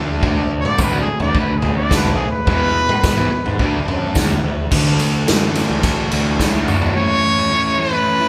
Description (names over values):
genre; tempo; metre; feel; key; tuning
indie rock; 107 BPM; 4/4; straight; unclear; A4 = 440 Hz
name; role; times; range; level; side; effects
raw garage guitar; riff; 0.0-6.9 s; E2 to F#4; -28 LUFS; equal; overdrive
fuzz picked electric bass; bass; 0.0-6.8 s; B1 to G#2; -25 LUFS; equal; overdrive
crunchy overdriven guitar; riff; 0.2-8.3 s; A2 to F#4; -23 LUFS; equal; none
raw garage drum kit; drums; 0.2-6.9 s; crash cymbal, kick drum, ride cymbal, snare drum, toms; -22 LUFS; equal; none
warm trumpet; melody; 0.6-8.3 s; G#4 to D5; -21 LUFS; equal; none
tambourine; percussion; 0.8-6.8 s; none; -37 LUFS; equal; none
room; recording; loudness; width
moderate large studio reverb, RT60 1.2 s; band playing live in one room; -17 LUFS; mono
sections
0.0-4.7 A section; 4.7-6.9 B section; 6.9-8.3 C section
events
trumpet solo 0.0-4.7; drum fill 6.4-6.9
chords
0.0 D; 2.5 E; 3.6 Dadd9; 6.9 Aadd9